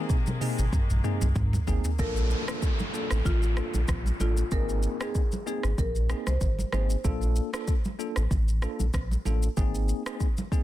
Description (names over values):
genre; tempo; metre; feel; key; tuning
afrobeats; 95 BPM; 4/4; swing 55% on 16ths; Bb major; A4 = 438 Hz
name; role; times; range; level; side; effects
bell-like tine electric piano; accompaniment; 0.0-10.6 s; Bb3 to A4; -34 LUFS; left 1 dB; medium stereo tremolo
warm studio string section; sustained chords; 0.0-2.0 s; C3 to Bb3; -39 LUFS; left 1 dB; none
afro-pop drum kit; drums; 0.1-10.6 s; hi-hat, kick drum, rim click, shaker, toms; -28 LUFS; equal; soft clipping on snare
congas; percussion; 0.3-10.5 s; none; -37 LUFS; right 3 dB; none
warm sub bass; bass; 0.6-9.9 s; Ab1 to Ab2; -26 LUFS; equal; none
marimba with medium mallets; melody; 2.0-6.9 s; F4 to C5; -36 LUFS; equal; digital delay
downlifter; sound effects; 2.0-7.0 s; none; -38 LUFS; equal; none
room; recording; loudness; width
little or no reverb; dense, heavily limited modern master; -25 LUFS; side -14 dB against mid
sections
0.0-2.0 A section; 2.0-10.6 B section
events
drum fill 0.0-2.0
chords
0.0 Abadd9; 2.0 Bbmaj7; 4.5 Abadd9; 7.0 Bbmaj7; 9.6 Abadd9